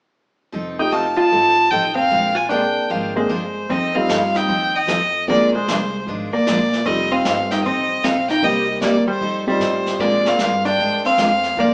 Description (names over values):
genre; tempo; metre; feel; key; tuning
country, western swing; 152 BPM; 4/4; swing 65% on 8ths; F mixolydian; A4 = 441 Hz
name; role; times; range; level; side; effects
picked steel-string acoustic guitar; accompaniment; 0.5-11.7 s; C3 to Bb4; -26 LUFS; equal; none
upright bass; bass; 0.5-11.7 s; F1 to Bb2; -30 LUFS; equal; none
clear fiddle; melody; 0.8-11.7 s; C5 to A5; -18 LUFS; equal; none
vintage hollow-body jazz guitar; second line; 0.8-11.7 s; G3 to F4; -21 LUFS; equal; none
dark upright piano; accompaniment; 0.8-11.1 s; G3 to Ab4; -24 LUFS; equal; none
jazz brush drum kit; drums; 3.7-11.7 s; brushed snare drum, hi-hat, kick drum, snare drum; -27 LUFS; equal; none
room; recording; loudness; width
wet stone room reverb, RT60 1.0 s; band playing live in one room, small speaker sound; -15 LUFS; side -34 dB against mid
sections
0.5-3.7 A section; 3.7-11.7 B section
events
none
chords
0.5 F9; 2.1 Bb9; 3.7 F9; 5.3 Bb9; 6.9 F9; 8.4 Cm7; 9.2 F9; 10.0 Bb9